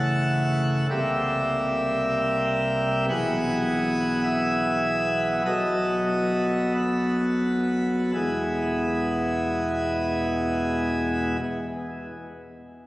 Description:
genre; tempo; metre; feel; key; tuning
classical, chorale-style piece for pipe organ; 42-57 BPM; 4/4; rubato; E major; A4 = 440 Hz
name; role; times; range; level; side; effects
pipe organ, plenum; solo; 0.0-11.4 s; E1 to F#5; -22 LUFS; equal; none
room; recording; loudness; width
wet church reverb, RT60 3.9 s; recorded on a phone in the room, studio reverb; -22 LUFS; side -18 dB against mid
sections
0.0-8.2 A section; 8.2-12.9 B section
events
slowing down 0.0-8.2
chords
0.0 A/C#; 0.9 C7; 3.1 E/B; 5.5 B7; 8.2 E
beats
0.90 1.97 | 3.09 4.24 5.45 6.76 | 8.15 9.53 10.94

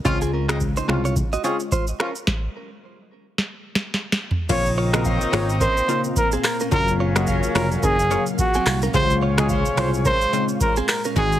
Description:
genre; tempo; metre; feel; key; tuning
afrobeats; 108 BPM; 4/4; swing 58% on 16ths; unclear; A4 = 441 Hz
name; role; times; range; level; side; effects
mellow horn section; second line; 0.0-11.4 s; Db3 to Db5; -29 LUFS; left 2 dB; none
analog pluck; accompaniment; 0.0-11.4 s; C3 to Gb4; -26 LUFS; left 3 dB; chorus
fingered electric bass; bass; 0.1-11.4 s; F1 to Db2; -23 LUFS; equal; none
booming analog drum machine; drums; 0.1-11.4 s; crash cymbal, finger snaps, handclaps, hi-hat, kick drum, rim click, shaker, snare drum, toms; -23 LUFS; equal; none
direct-recorded clean electric guitar; riff; 0.2-11.1 s; C4 to F5; -29 LUFS; right 3 dB; wide subtle chorus, digital delay
mellow trumpet; melody; 4.5-11.4 s; Gb4 to Db5; -23 LUFS; right 1 dB; digital delay
ethereal airy pad; sustained chords; 5.6-11.4 s; Bb2 to F5; -32 LUFS; left 1 dB; ensemble chorus, built-in reverb, tremolo
room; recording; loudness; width
light reverb; heavily compressed radio sound, multiband compression; -18 LUFS; side -12 dB against mid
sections
0.0-4.5 A section; 4.5-11.4 B section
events
stop 2.3-4.5; drum fill 3.4-4.5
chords
0.1 Dbmaj7; 2.3 N.C.; 4.5 Bbmadd9; 6.7 Gbmaj7; 8.9 Dbmaj7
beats
| 0.05 0.61 1.16 1.72 | 2.27 2.83 3.38 3.94 | 4.50 5.05 5.61 6.16 | 6.72 7.27 7.83 8.38 | 8.94 9.49 10.05 10.61 | 11.16

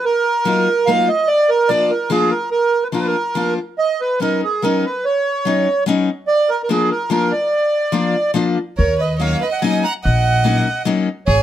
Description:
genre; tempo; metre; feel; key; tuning
musette waltz; 144 BPM; 3/4; rubato; Eb minor; A4 = 444 Hz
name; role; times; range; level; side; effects
accordion; melody; 0.0-11.4 s; Ab4 to Bb5; -16 LUFS; right 3 dB; plate reverb
picked steel-string acoustic guitar; accompaniment; 0.5-11.1 s; F3 to F4; -18 LUFS; left 4 dB; none
clear violin; second line; 8.8-11.4 s; Ab4 to Gb5; -24 LUFS; right 2 dB; none
upright bass; bass; 8.8-11.4 s; Ab1 to Eb2; -17 LUFS; equal; none
room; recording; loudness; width
light reverb; close, detailed microphones; -15 LUFS; side -11 dB against mid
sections
0.0-11.4 A section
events
none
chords
0.0 Ebmadd9; 1.3 Bb; 3.8 Badd9; 6.3 Bb; 8.8 Ebm7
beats
| 0.04 0.46 0.87 | 1.28 1.69 2.10 | 2.51 2.93 3.35 | 3.78 4.20 4.62 | 5.04 5.45 5.87 | 6.28 6.69 7.11 | 7.52 7.93 8.35 | 8.78 9.20 9.62 | 10.04 10.45 10.87 | 11.28

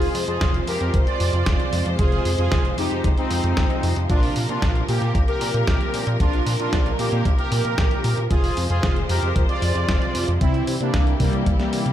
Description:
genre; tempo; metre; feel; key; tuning
italo disco; 114 BPM; 4/4; straight; F dorian; A4 = 440 Hz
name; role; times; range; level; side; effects
analog synth brass; melody; 0.0-11.9 s; G3 to D5; -25 LUFS; equal; chorus, cassette tape, tape echo
rich studio string section; sustained chords; 0.0-11.9 s; C3 to C5; -28 LUFS; equal; none
chorused synth bass; bass; 0.0-11.9 s; F1 to C3; -24 LUFS; equal; none
dusty soul sampler-style drum kit; drums; 0.0-11.9 s; hi-hat, snare drum; -29 LUFS; equal; gated reverb
electronic kick drum; drums; 0.4-11.6 s; none; -21 LUFS; equal; none
room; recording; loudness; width
digital ambience; none; -18 LUFS; side -11 dB against mid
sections
0.0-11.9 A section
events
none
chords
0.0 Fm; 4.1 Bbsus2; 8.3 Fm; 10.4 C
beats
0.41 0.94 1.46 | 1.99 2.52 3.04 3.57 | 4.09 4.62 5.15 5.67 | 6.20 6.73 7.25 7.78 | 8.31 8.83 9.36 9.88 | 10.41 10.94 11.46

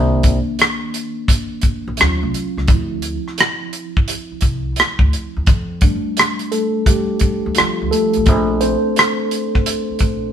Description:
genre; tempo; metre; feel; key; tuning
R&B, neo-soul; 86 BPM; 4/4; swing 63% on 16ths; F major; A4 = 439 Hz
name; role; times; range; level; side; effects
mellow tine electric piano; accompaniment; 0.0-10.3 s; Eb3 to C5; -20 LUFS; equal; medium stereo tremolo
upright bass; bass; 0.0-10.3 s; A1 to F2; -21 LUFS; equal; none
damped 70s drum kit; drums; 0.2-10.2 s; hi-hat, kick drum, rim click; -15 LUFS; equal; none
room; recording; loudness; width
moderate stone room reverb, RT60 1.0 s; band playing live in one room; -15 LUFS; side -9 dB against mid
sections
0.0-10.3 A section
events
tine electric piano solo 0.0-10.3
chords
0.0 Cm9; 2.0 Ebm9; 2.7 Dm9; 5.5 F69; 8.3 Bbmaj9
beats
0.59 1.29 1.99 | 2.68 3.38 4.08 4.78 | 5.47 6.17 6.87 7.57 | 8.26 8.96 9.66

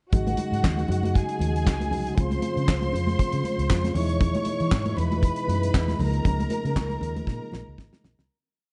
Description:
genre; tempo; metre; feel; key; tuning
disco; 118 BPM; 4/4; swing 56% on 16ths; unclear; A4 = 442 Hz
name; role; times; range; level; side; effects
dark studio string section; second line; 0.1-8.3 s; Gb4 to Db6; -33 LUFS; equal; none
percussive tonewheel organ; sustained chords; 0.1-8.3 s; B2 to Gb4; -33 LUFS; equal; chorus vibrato, slow rotary speaker
vintage muted fingered electric bass; bass; 0.1-8.3 s; Ab1 to E3; -29 LUFS; equal; tube saturation
damped 70s drum kit; drums; 0.1-8.3 s; handclaps, hi-hat, kick drum, snare drum; -27 LUFS; equal; none
congas; percussion; 0.1-8.2 s; none; -35 LUFS; equal; none
room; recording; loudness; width
light reverb, small room ambience; dark, warm production, nothing above 10.6 kHz; -25 LUFS; mono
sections
0.1-8.3 pre-chorus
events
fade-out 6.2-8.3; drum fill 7.3-8.3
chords
0.1 Ab7sus4; 2.2 Dbmaj7; 4.0 Emaj7; 6.0 Db69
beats
| 0.13 0.64 1.15 1.66 | 2.17 2.68 3.19 3.70 | 4.21 4.72 5.23 5.74 | 6.25 6.76 7.27 7.78

